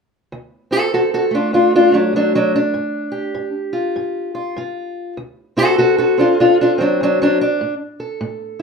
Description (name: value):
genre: acoustic country blues, solo or duo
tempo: 99 BPM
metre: 4/4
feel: swing 62% on 8ths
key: unclear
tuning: A4 = 440 Hz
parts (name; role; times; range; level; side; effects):
- fingerpicked steel-string acoustic guitar; solo; 0.3-8.6 s; D2 to A4; -15 LUFS; equal; none
room: moderate studio reverb, RT60 0.8 s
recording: minimal, uncompressed stereo recording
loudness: -14 LUFS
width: side -5 dB against mid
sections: 0.3-8.6 A section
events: none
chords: 0.3 D7; 2.7 G5; 5.2 D7; 7.6 N.C.